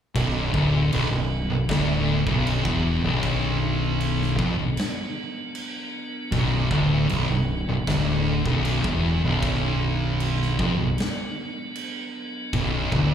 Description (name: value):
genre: stoner and doom metal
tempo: 78 BPM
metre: 4/4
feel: straight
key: B minor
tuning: A4 = 440 Hz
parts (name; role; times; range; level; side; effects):
- tonewheel organ; sustained chords; 0.2-13.1 s; F#3 to D4; -33 LUFS; right 1 dB; slow rotary speaker
- thick fuzz guitar; riff; 0.2-13.1 s; B1 to E#2; -25 LUFS; left 8 dB; distortion, slapback echo
- thick fuzz guitar; riff; 0.2-13.1 s; B1 to E#2; -26 LUFS; right 8 dB; distortion
- growling fingered electric bass; bass; 0.2-13.1 s; B0 to E#1; -27 LUFS; equal; overdrive
- big rock drum kit; drums; 0.2-13.1 s; crash cymbal, kick drum, snare drum; -31 LUFS; equal; none
room: light reverb, small room ambience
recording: live gig heard through the venue's PA, club reverb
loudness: -21 LUFS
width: side -9 dB against mid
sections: 0.2-13.1 A section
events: none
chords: 0.2 Bm